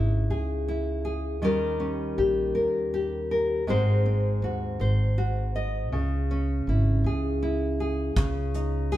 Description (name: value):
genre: acoustic folk duo or small band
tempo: 53 BPM (dotted quarters)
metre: 6/8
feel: straight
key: C# harmonic minor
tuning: A4 = 437 Hz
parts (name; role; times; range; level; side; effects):
- nylon-string guitar; accompaniment; 0.0-9.0 s; G#2 to D#5; -26 LUFS; left 1 dB; none
- upright bass; bass; 0.0-9.0 s; G#1 to D#2; -27 LUFS; equal; none
- soft brush drum kit; drums; 8.2-9.0 s; hi-hat, kick drum; -26 LUFS; equal; none
room: moderate stone room reverb, RT60 1.1 s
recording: band playing live in one room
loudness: -24 LUFS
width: side -14 dB against mid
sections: 0.0-8.2 A section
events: none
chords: 0.0 C#madd9; 1.4 D#7; 3.7 G#7; 5.9 C#m; 8.2 C#sus2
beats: 0.29 | 1.42 2.54 | 3.67 4.79 | 5.92 7.04 | 8.16